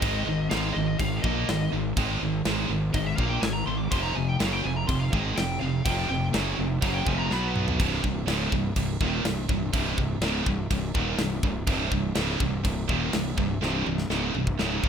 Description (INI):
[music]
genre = heavy metal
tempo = 124 BPM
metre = 4/4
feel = straight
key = C minor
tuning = A4 = 440 Hz
[part]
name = high-gain lead guitar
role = melody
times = 0.0-7.5 s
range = Eb5 to D6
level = -33 LUFS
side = left 1 dB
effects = distortion, tape echo
[part]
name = high-gain distorted guitar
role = riff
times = 0.0-14.9 s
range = C2 to B3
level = -31 LUFS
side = right 1 dB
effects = distortion
[part]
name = scooped high-gain guitar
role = riff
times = 0.0-14.9 s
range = C2 to B3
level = -33 LUFS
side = left 10 dB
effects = distortion
[part]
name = tight distorted guitar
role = riff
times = 0.0-14.9 s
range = C2 to B3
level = -31 LUFS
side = right 12 dB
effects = distortion
[part]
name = fuzz fingered electric bass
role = bass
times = 0.0-14.9 s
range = C1 to B1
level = -30 LUFS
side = left 1 dB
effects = overdrive
[part]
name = tight metal drum kit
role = drums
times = 0.0-14.9 s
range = crash cymbal, kick drum, snare drum, toms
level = -30 LUFS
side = left 1 dB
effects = none
[sound]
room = little or no reverb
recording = rough home demo mix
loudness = -24 LUFS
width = side -8 dB against mid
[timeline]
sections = 0.0-7.8 A section; 7.8-14.9 B section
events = lead electric guitar solo 0.0-7.8; drum fill 7.3-7.8, 13.6-14.9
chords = 0.0 Ab5; 3.9 F5; 7.3 B5; 7.8 Cm